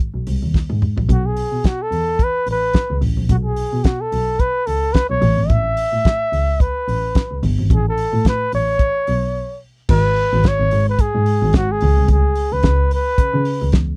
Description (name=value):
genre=disco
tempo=109 BPM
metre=4/4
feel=swing 56% on 16ths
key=unclear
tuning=A4 = 441 Hz
part: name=warm double bass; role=bass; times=0.1-13.9 s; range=G1 to C#3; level=-21 LUFS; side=equal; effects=none
part: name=damped 70s drum kit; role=drums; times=0.3-13.9 s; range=crash cymbal, hi-hat, kick drum, snare drum, toms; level=-18 LUFS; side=equal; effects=none
part: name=breathy flugelhorn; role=melody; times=1.1-13.7 s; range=F#4 to E5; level=-22 LUFS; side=equal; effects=none
room=little or no reverb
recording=dry, close 1970s-style studio recording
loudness=-18 LUFS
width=mono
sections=0.0-1.1 A section; 1.1-9.9 B section; 9.9-14.0 C section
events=drum fill 0.5-1.1; break 9.3-9.9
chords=0.0 G#; 1.1 B7(no3); 5.2 Aadd9; 9.9 G#m; 11.8 C#7(no3)